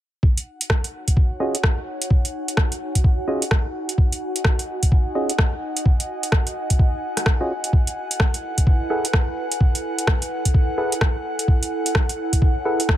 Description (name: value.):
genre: UK garage, two-step garage.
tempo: 128 BPM.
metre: 4/4.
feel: swing 62% on 16ths.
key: unclear.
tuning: A4 = 440 Hz.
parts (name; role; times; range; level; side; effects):
airy breathy pad; sustained chords; 0.6-13.0 s; Gb5; -33 LUFS; equal; chorus, sidechain pumping.
electronic kick drum; drums; 0.2-13.0 s; none; -17 LUFS; equal; none.
warbly tape-like pad; texture; 1.0-13.0 s; Eb4 to Ab5; -29 LUFS; right 1 dB; chorus, built-in reverb, sidechain pumping.
house drum kit; drums; 0.4-13.0 s; hi-hat, rim click; -23 LUFS; right 1 dB; none.
percussive organ stab; stabs; 1.4-12.8 s; Db4 to Gb5; -25 LUFS; equal; chorus, ping-pong delay.
room: little or no reverb.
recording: none.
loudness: -18 LUFS.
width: side -13 dB against mid.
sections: 0.2-13.0 A section.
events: filter sweep on synth stab 0.2-13.0; filter sweep on analog synth pad 0.2-13.0.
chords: 0.2 Ebm11; 7.7 Gbm11.